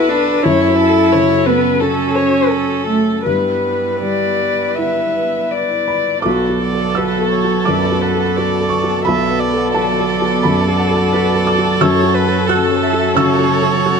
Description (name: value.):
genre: neoclassical piano and strings.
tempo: 78-90 BPM.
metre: 4/4.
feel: rubato.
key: B minor.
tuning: A4 = 438 Hz.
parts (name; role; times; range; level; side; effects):
dark violin; melody; 0.0-14.0 s; A4 to E5; -18 LUFS; left 5 dB; none.
warm cello; second line; 0.0-14.0 s; F#3 to E4; -19 LUFS; right 4 dB; none.
felt-muted upright piano; accompaniment; 0.0-14.0 s; B1 to F#6; -18 LUFS; equal; none.
warm viola; accompaniment; 0.0-14.0 s; F#4 to E5; -22 LUFS; right 4 dB; none.
warm chamber string section; sustained chords; 0.0-14.0 s; B3 to B4; -24 LUFS; equal; none.
concert harp; arpeggios; 6.3-14.0 s; F#4 to A5; -24 LUFS; left 3 dB; none.
room: light reverb.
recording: close, detailed microphones.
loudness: -13 LUFS.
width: side -6 dB against mid.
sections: 0.0-6.3 A section; 6.3-14.0 A section.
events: none.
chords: 0.4 F#m7; 3.3 Em/G; 6.3 Bm7; 11.8 F#m7.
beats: | 0.45 1.14 1.82 2.53 | 3.26 4.01 4.78 5.52 | 6.25 6.97 7.68 8.37 | 9.07 9.76 10.44 11.13 | 11.81 12.49 13.16 13.86.